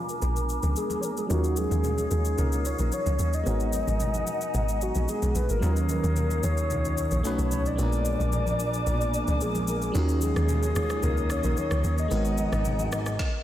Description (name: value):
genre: amapiano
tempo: 111 BPM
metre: 4/4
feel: straight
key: Eb minor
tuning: A4 = 444 Hz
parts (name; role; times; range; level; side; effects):
- soft octave-layered synth lead; melody; 0.0-13.4 s; F4 to Eb5; -31 LUFS; left 1 dB; chorus, low-pass filter, analog delay
- FM electric piano; accompaniment; 0.0-13.2 s; Gb3 to B4; -33 LUFS; right 1 dB; chorus, phaser, low-pass filter
- small flute group; sustained chords; 0.0-13.2 s; Bb4 to Eb6; -36 LUFS; left 1 dB; sidechain pumping, low-pass filter
- downlifter; sound effects; 0.0-1.3 s; none; -56 LUFS; equal; none
- afro-pop drum kit; drums; 0.1-13.3 s; kick drum, rim click, shaker, snare drum; -36 LUFS; left 1 dB; none
- woody log drum bass; bass; 0.2-12.9 s; Ab1 to Eb2; -26 LUFS; equal; none
- congas; percussion; 0.2-12.9 s; none; -37 LUFS; left 1 dB; none
- fat analog bass; bass; 5.6-13.2 s; Ab1 to Eb2; -30 LUFS; equal; none
room: moderate plate reverb, RT60 2.2 s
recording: dreamy mix soaked in reverb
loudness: -24 LUFS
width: side -12 dB against mid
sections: 0.0-13.4 A section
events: filter sweep 0.0-13.4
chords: 0.0 Bb7b9; 1.3 Ebm9; 3.5 Abm9; 5.6 Ebm9; 7.2 B9; 7.8 Bb7b9; 9.9 Ebm9; 12.1 Abm9